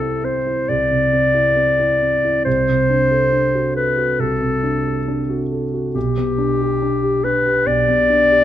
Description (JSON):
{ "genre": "classical, romantic duo for clarinet and grand piano", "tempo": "69 BPM", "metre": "4/4", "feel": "rubato", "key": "G major", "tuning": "A4 = 441 Hz", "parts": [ { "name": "warm clarinet", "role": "melody", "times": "0.0-8.4 s", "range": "G4 to D5", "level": "-16 LUFS", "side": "left 2 dB", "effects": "none" }, { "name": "dark concert grand piano", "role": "accompaniment", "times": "0.0-8.4 s", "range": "B1 to A4", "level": "-20 LUFS", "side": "right 2 dB", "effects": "none" } ], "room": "moderate recital hall reverb, RT60 1.5 s", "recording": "close, detailed microphones", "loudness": "-15 LUFS", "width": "side -12 dB against mid", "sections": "0.0-8.4 A section", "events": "none", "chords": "0.0 Am/C (rootless); 2.5 D7/C; 6.0 G/B" }